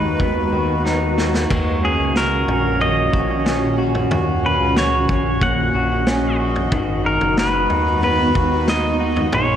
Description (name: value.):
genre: dream pop.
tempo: 92 BPM.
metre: 4/4.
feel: straight.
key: unclear.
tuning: A4 = 439 Hz.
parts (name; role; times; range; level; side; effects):
pedal steel guitar; melody; 0.0-9.6 s; Ab4 to Gb5; -21 LUFS; equal; tape echo.
granular cloud pad; sustained chords; 0.0-9.6 s; Bb2 to Cb5; -24 LUFS; right 1 dB; built-in reverb.
electric guitar through a small old amp; arpeggios; 0.0-9.6 s; Eb3 to Gb4; -23 LUFS; left 1 dB; lush chorus, tape echo.
fat analog bass; bass; 0.0-9.6 s; Gb1 to Eb2; -23 LUFS; equal; none.
vintage drum kit; drums; 0.2-9.5 s; crash cymbal, kick drum, snare drum, toms; -24 LUFS; equal; none.
drifting glass-harmonics texture; texture; 2.4-7.0 s; Db5 to Eb5; -35 LUFS; equal; chorus, built-in reverb, tape echo.
room: moderate recital hall reverb, RT60 1.6 s, studio ambience.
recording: none.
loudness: -16 LUFS.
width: side -9 dB against mid.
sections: 0.0-9.6 A section.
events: drum fill 0.9-1.5.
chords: 0.0 Abm7; 1.5 Ebm7; 6.7 Abm7.